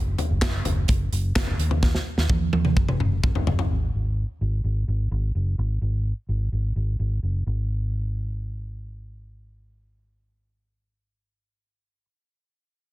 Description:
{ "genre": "piano-driven pop", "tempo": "128 BPM", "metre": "4/4", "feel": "straight", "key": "unclear", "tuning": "A4 = 440 Hz", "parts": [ { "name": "vintage muted fingered electric bass", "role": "bass", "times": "0.0-12.0 s", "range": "Gb1 to Eb2", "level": "-24 LUFS", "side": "equal", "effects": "none" }, { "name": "modern studio drum kit", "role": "drums", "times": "0.2-3.7 s", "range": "handclaps, hi-hat, kick drum, snare drum, toms", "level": "-23 LUFS", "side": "equal", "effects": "none" } ], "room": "little or no reverb", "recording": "dense, heavily limited modern master", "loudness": "-22 LUFS", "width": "side -17 dB against mid", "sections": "0.0-3.7 A section; 3.7-7.5 B section; 7.5-11.2 C section", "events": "drum fill 1.8-3.7", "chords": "none" }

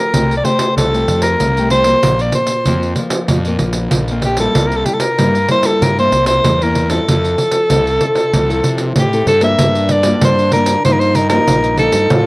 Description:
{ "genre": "samba and choro", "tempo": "95 BPM", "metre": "4/4", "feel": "straight", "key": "F major", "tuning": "A4 = 442 Hz", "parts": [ { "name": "breathy soprano saxophone", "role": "melody", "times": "0.0-12.3 s", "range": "G4 to E5", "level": "-14 LUFS", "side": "equal", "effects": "cassette tape" }, { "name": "nylon-string guitar", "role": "accompaniment", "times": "0.0-12.3 s", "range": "F2 to Bb4", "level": "-20 LUFS", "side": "left 2 dB", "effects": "cassette tape" }, { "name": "fuzz fingered electric bass", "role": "bass", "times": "0.1-12.3 s", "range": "Bb1 to C3", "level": "-19 LUFS", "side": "equal", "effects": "overdrive" }, { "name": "pandeiro", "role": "percussion", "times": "0.1-12.3 s", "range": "none", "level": "-17 LUFS", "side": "right 1 dB", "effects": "none" }, { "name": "breathy trombone", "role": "second line", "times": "9.6-12.3 s", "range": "D4 to F4", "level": "-20 LUFS", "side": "right 1 dB", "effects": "cassette tape" } ], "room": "moderate spring reverb, RT60 1.5 s, studio reverb", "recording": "home recording on cassette", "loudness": "-11 LUFS", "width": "side -22 dB against mid", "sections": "0.0-9.6 A section; 9.6-12.3 B section", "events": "none", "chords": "0.0 Fadd9; 2.0 Bbsus2; 4.6 C7; 7.1 Fmaj7; 9.6 Gm; 10.8 Ebadd9/G" }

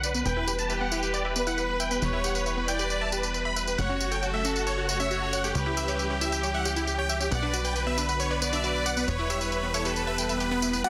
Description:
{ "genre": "uplifting trance", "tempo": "136 BPM", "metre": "4/4", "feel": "straight", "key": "unclear", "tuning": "A4 = 441 Hz", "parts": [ { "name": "supersaw chords", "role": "melody", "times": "0.0-10.9 s", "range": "F#4 to B5", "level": "-32 LUFS", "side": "equal", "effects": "low-pass filter, dub echo" }, { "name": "analog string pad", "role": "sustained chords", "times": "0.0-10.9 s", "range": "C#3 to G4", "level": "-40 LUFS", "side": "equal", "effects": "ensemble chorus" }, { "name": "analog pluck", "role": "arpeggios", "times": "0.0-10.9 s", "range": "A3 to B5", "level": "-36 LUFS", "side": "equal", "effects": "chorus, delay" }, { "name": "plucky analog bass", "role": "bass", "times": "0.0-10.8 s", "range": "E1 to C#2", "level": "-35 LUFS", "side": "equal", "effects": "none" }, { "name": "electronic tambourine and hi-hat", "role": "drums", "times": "0.0-10.9 s", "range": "none", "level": "-35 LUFS", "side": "equal", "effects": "none" }, { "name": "clear studio violin section", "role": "second line", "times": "0.3-10.3 s", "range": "G4 to D5", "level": "-35 LUFS", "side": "equal", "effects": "delay" }, { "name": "swell and riser", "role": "sound effects", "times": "10.1-10.9 s", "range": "none", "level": "-35 LUFS", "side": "equal", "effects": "none" }, { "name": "plucky unison lead", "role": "second line", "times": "10.8-10.9 s", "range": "F#5", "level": "-27 LUFS", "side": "equal", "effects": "ensemble chorus, cassette tape" } ], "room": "moderate digital room reverb, RT60 1.2 s", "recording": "dense, heavily limited modern master", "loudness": "-27 LUFS", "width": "mono", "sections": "0.0-10.8 A section", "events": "filter sweep on synth pluck 0.0-10.8; swell 10.1-10.8", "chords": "0.3 Em; 3.8 F#m; 5.5 C#dim; 7.3 Bm; 9.1 Em" }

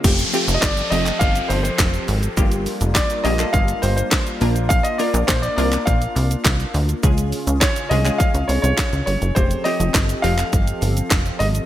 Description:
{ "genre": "dance-pop", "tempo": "103 BPM", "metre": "4/4", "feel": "straight", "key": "unclear", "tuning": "A4 = 443 Hz", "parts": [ { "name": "wavetable chord stab", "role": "accompaniment", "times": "0.0-11.0 s", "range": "Ab3 to Bb4", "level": "-26 LUFS", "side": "left 2 dB", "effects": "wide subtle chorus, sidechain pumping" }, { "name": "warm analog pad", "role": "sustained chords", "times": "0.0-11.7 s", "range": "Db3 to A4", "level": "-29 LUFS", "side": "left 1 dB", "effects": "chorus, sidechain pumping" }, { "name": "plucky analog bass", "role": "bass", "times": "0.0-11.6 s", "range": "F1 to D2", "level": "-20 LUFS", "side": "equal", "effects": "sidechain pumping" }, { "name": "house drum kit", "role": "drums", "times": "0.0-11.7 s", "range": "crash cymbal, handclaps, hi-hat, kick drum, shaker, snare drum", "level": "-20 LUFS", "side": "equal", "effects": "none" }, { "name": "swell and downlifter", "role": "sound effects", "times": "0.0-4.7 s", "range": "none", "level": "-26 LUFS", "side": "equal", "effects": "none" }, { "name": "warm baby grand piano", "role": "melody", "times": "0.5-11.5 s", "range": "C5 to F5", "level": "-23 LUFS", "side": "equal", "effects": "digital delay" } ], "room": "light reverb", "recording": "bright 1980s-style digital production", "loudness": "-16 LUFS", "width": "side -12 dB against mid", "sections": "0.0-11.7 A section", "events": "none", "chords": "0.0 Fadd9; 2.4 Gm7; 4.4 Bb; 7.0 Db; 9.4 Fadd9" }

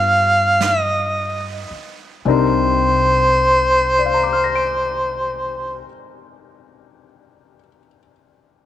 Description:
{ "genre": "jazz ballad", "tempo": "35 BPM", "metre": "4/4", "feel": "swing 68% on 8ths", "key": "C minor", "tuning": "A4 = 437 Hz", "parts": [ { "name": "mellow harmonica", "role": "melody", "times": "0.0-5.8 s", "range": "C5 to F5", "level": "-16 LUFS", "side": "equal", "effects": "none" }, { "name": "warm concert grand piano", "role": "accompaniment", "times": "0.0-8.7 s", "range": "C3 to D7", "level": "-22 LUFS", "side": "left 11 dB", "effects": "none" }, { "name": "upright bass", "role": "bass", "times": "0.0-5.8 s", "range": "C2 to G2", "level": "-24 LUFS", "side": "right 1 dB", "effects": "none" }, { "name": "jazz brush drum kit", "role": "drums", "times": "0.6-3.1 s", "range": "brushed snare drum, hi-hat, snare drum", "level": "-30 LUFS", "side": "right 7 dB", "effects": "none" } ], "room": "moderate echo chamber reverb, RT60 2.2 s", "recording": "1960s-style stereo with parts hard left and right", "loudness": "-15 LUFS", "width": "side -11 dB against mid", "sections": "0.0-2.2 A section; 2.2-8.7 B section", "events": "slowing down 0.0-2.2", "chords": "0.0 G7; 2.2 Cm9" }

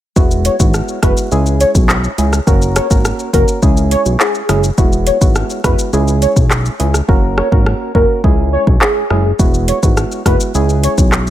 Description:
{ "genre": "dancehall", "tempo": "104 BPM", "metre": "4/4", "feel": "straight", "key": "C# dorian", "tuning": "A4 = 440 Hz", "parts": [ { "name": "percussive organ stab", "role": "accompaniment", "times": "0.2-11.3 s", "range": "G#3 to A#4", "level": "-18 LUFS", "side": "right 3 dB", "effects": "chorus" }, { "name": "fat analog bass", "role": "bass", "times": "0.2-11.3 s", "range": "E1 to C#2", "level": "-15 LUFS", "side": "equal", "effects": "none" }, { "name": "afro-pop drum kit", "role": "drums", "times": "0.2-11.3 s", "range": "handclaps, hi-hat, kick drum, rim click, shaker", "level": "-14 LUFS", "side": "equal", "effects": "none" }, { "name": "warm velvety synth lead", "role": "melody", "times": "0.5-10.9 s", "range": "G#4 to C#5", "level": "-18 LUFS", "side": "left 1 dB", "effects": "chorus, ping-pong delay" } ], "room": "digital ambience", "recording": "none", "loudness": "-11 LUFS", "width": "side -12 dB against mid", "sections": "0.2-11.3 A section", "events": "hi-hats muted 7.1-9.4", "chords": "0.2 Eadd9; 1.3 C#m; 2.5 F#; 3.6 C#m; 4.8 Eadd9; 5.9 C#m; 7.1 F#; 8.2 C#m; 9.4 Eadd9; 10.5 C#m" }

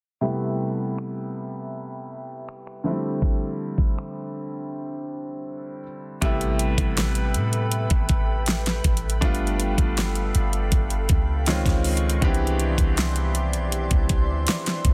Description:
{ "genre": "contemporary R&B", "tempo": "80 BPM", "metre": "4/4", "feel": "straight", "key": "A minor", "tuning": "A4 = 440 Hz", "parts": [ { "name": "bright baby grand piano", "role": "accompaniment", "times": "0.2-14.9 s", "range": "C3 to G4", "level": "-30 LUFS", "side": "equal", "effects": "none" }, { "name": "pop drum kit", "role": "drums", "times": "1.0-14.9 s", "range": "finger snaps, hi-hat, kick drum, snare drum", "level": "-25 LUFS", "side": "equal", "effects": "soft clipping on snare" }, { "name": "glassy FM pad", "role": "sustained chords", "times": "6.6-14.9 s", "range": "G4 to C#6", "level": "-35 LUFS", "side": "equal", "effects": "ensemble chorus, built-in reverb, sidechain pumping" }, { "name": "clean 808-style bass", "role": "bass", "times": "6.2-14.9 s", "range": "G1 to A2", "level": "-27 LUFS", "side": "equal", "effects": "none" } ], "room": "little or no reverb", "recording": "dense, heavily limited modern master, low-pass filter", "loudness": "-24 LUFS", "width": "mono", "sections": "0.2-6.2 A section; 6.2-14.9 B section", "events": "filter sweep 0.2-6.2; break 4.7-6.2", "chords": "0.2 Am7; 2.8 D9sus4; 6.2 Am9; 9.2 G9; 11.5 C#maj9; 12.2 Cmaj9" }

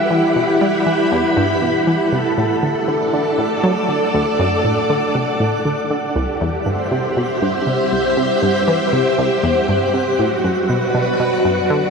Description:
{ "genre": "ambient", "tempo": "119 BPM", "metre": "4/4", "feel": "straight", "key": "unclear", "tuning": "A4 = 441 Hz", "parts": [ { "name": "string machine, full ensemble", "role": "sustained chords", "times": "0.0-11.9 s", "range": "E4 to B5", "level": "-16 LUFS", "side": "equal", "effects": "ensemble chorus" }, { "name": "analog pluck", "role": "riff", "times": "0.0-11.8 s", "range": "C2 to G3", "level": "-20 LUFS", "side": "equal", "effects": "chorus, analog delay" }, { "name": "twinkling granular texture", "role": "texture", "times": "1.0-11.9 s", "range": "F#5", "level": "-31 LUFS", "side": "right 2 dB", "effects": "built-in reverb" } ], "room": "wet huge ambient reverb, RT60 8.1 s", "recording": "none", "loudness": "-15 LUFS", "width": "side -5 dB against mid", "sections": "0.0-11.9 A section", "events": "fade-in on synth texture 0.0-11.9", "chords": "0.0 Emadd9; 2.1 D; 6.2 C; 10.2 Bm" }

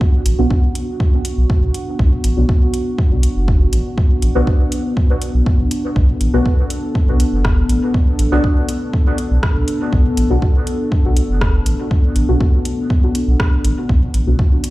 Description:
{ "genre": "dub techno", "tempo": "121 BPM", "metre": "4/4", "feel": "straight", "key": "B minor", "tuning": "A4 = 440 Hz", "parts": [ { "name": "dark analog pad", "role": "sustained chords", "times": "0.0-14.7 s", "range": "B3 to A4", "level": "-22 LUFS", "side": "left 1 dB", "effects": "chorus, sidechain pumping" }, { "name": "electronic kick drum", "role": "drums", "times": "0.0-14.5 s", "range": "none", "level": "-15 LUFS", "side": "equal", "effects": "small room reverb" }, { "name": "warm sub bass", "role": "bass", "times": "0.3-14.3 s", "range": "F#1 to B1", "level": "-15 LUFS", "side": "equal", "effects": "sidechain pumping" }, { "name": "deep house drum kit", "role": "drums", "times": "0.3-14.7 s", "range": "hi-hat, rim click", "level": "-26 LUFS", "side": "equal", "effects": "small room reverb" }, { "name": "deep mellow chord stab", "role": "stabs", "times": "0.4-14.4 s", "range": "B3 to F#4", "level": "-23 LUFS", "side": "equal", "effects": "chorus, phaser, sidechain pumping, dub echo" } ], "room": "digital ambience", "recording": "played on a big sound system in a bare room, large studio reverb", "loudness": "-13 LUFS", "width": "side -18 dB against mid", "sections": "0.0-14.7 A section", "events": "none", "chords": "0.0 Bm" }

